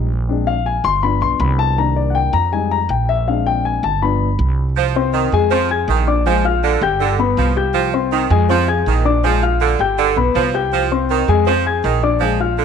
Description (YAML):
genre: latin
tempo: 161 BPM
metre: 4/4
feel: straight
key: C minor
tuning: A4 = 440 Hz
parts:
  - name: dark grand piano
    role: accompaniment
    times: 0.0-12.6 s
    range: Eb3 to Ab6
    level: -18 LUFS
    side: left 10 dB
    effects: none
  - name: upright bass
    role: bass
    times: 0.0-12.6 s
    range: G1 to F2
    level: -19 LUFS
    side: right 2 dB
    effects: none
  - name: edgy saxophone section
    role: second line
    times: 4.8-12.6 s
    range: D3 to F3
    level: -19 LUFS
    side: right 12 dB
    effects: none
room: light reverb, small room ambience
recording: 1960s-style stereo with parts hard left and right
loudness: -14 LUFS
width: side -7 dB against mid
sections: 0.0-4.8 A section; 4.8-12.6 B section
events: grand piano solo 0.0-4.8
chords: 0.3 Bb7; 1.0 G7; 1.8 Cm7; 2.5 Fm7; 3.3 Bb7; 4.0 G7; 4.8 Cm; 5.5 Fm7; 6.3 Bb7; 7.0 G7; 7.7 Cm; 8.5 Fm7; 9.2 Bb7; 10.0 G7; 10.7 Cm; 11.5 Fm7